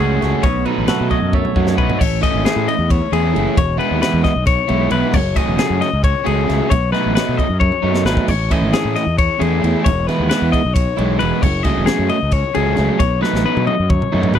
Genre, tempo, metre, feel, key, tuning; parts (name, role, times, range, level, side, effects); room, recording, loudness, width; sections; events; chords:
math rock and midwest emo; 268 BPM (eighths); 7/8; straight; E major; A4 = 440 Hz
twelve-string electric guitar; accompaniment; 0.0-3.6 s; F#2 to A4; -24 LUFS; right 10 dB; wide subtle chorus
clean electric guitar; arpeggios; 0.0-14.4 s; G#4 to D#5; -20 LUFS; left 9 dB
crunchy overdriven guitar; riff; 0.0-14.4 s; B2 to F#4; -19 LUFS; right 3 dB
fuzz fingered electric bass; bass; 0.0-14.4 s; E1 to B2; -19 LUFS; equal; overdrive
crisp fusion drum kit; drums; 0.2-14.4 s; crash cymbal, kick drum, ride cymbal, snare drum, toms; -19 LUFS; equal
small room ambience; dry, close 1970s-style studio recording, lossy compression artefacts; -14 LUFS; side -9 dB against mid
0.0-2.0 A section; 2.0-14.4 B section
drum fill 1.3-2.0, 7.6-8.3, 13.2-14.4
0.4 B9; 2.0 Amaj7; 3.6 Emaj7; 5.1 F#madd9; 6.7 B9; 8.3 Amaj7; 9.9 Emaj7; 11.4 F#madd9; 13.0 B9